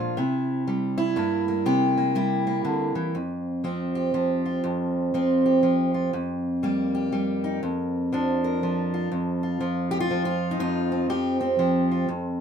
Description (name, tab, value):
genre	folk, solo fingerstyle acoustic guitar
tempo	121 BPM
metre	3/4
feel	swing 62% on 8ths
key	unclear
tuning	A4 = 443 Hz
part	fingerpicked steel-string acoustic guitar	solo	0.0-12.4 s	F2 to Bb4	-22 LUFS	right 1 dB	none
room	moderate studio reverb, RT60 0.8 s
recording	minimal, uncompressed stereo recording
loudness	-22 LUFS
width	side -7 dB against mid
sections	0.0-3.1 A section; 3.1-9.1 B section; 9.1-12.4 C section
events	none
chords	0.2 C7; 3.1 Fsus2; 6.1 Fsus4; 7.6 Bb/F; 9.1 Fsus2